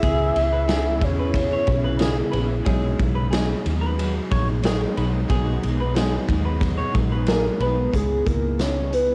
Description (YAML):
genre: indie pop, bedroom pop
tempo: 91 BPM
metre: 4/4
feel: straight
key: C# dorian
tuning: A4 = 440 Hz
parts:
  - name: soft octave-layered synth lead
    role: melody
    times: 0.0-2.0, 7.3-9.1 s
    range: G#4 to E5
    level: -26 LUFS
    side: equal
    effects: phaser, lush chorus, cassette tape, analog delay
  - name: electric guitar through a small old amp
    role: second line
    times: 0.0-7.8 s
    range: G#4 to C#5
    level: -34 LUFS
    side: equal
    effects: lush chorus, cassette tape, analog delay
  - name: picked steel-string acoustic guitar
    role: accompaniment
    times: 0.0-9.1 s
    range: B2 to G#4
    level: -30 LUFS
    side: equal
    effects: subtle chorus, warbly pitch drift, cassette tape
  - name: granular cloud pad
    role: sustained chords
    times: 0.0-9.1 s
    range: C#3 to E4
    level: -35 LUFS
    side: equal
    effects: none
  - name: vintage muted fingered electric bass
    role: bass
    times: 0.0-9.1 s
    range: A#1 to E2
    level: -27 LUFS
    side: equal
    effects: tube saturation
  - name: raw garage drum kit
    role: drums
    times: 0.0-9.1 s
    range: hi-hat, kick drum, ride cymbal, snare drum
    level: -28 LUFS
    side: equal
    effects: none
room: small room ambience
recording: home recording on cassette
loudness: -22 LUFS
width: mono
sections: 0.0-7.9 A section; 7.9-9.1 B section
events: none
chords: 0.0 C#m7; 2.7 B6; 7.9 C#m7